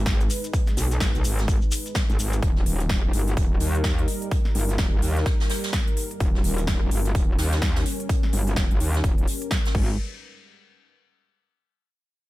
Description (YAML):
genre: bass house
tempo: 127 BPM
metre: 4/4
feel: swing 60% on 16ths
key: unclear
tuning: A4 = 440 Hz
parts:
  - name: dark analog pad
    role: sustained chords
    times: 0.0-10.0 s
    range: G3 to B4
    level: -33 LUFS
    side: equal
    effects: chorus, sidechain pumping
  - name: metallic wobble bass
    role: bass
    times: 0.0-10.0 s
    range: D#1 to D#2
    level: -24 LUFS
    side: equal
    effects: chorus, overdrive, sidechain pumping
  - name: big-room dance drum kit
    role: drums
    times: 0.1-9.9 s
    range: crash cymbal, hi-hat, snare drum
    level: -31 LUFS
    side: left 1 dB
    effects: overdrive, small room ambience
  - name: electronic kick drum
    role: drums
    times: 0.1-9.9 s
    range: none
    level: -23 LUFS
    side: equal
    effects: overdrive, small room ambience
  - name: vintage brush drum kit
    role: drums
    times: 0.1-9.7 s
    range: hi-hat, snare drum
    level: -36 LUFS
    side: right 2 dB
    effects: high-pass filter on hats, small room ambience, high-pass filter on snare, high-pass filter on room
  - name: shekere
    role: percussion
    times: 0.1-2.4 s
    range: none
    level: -35 LUFS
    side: left 2 dB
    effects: none
room: small room ambience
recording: none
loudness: -21 LUFS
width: side -17 dB against mid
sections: 0.0-10.0 A section; 10.0-11.9 B section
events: none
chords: 0.0 G#m; 2.4 D#; 9.7 G#m; 10.0 N.C.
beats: 0.06 | 0.54 1.01 1.48 1.95 | 2.42 2.90 3.37 3.84 | 4.32 4.79 5.26 5.73 | 6.20 6.68 7.15 7.62 | 8.09 8.57 9.04 9.51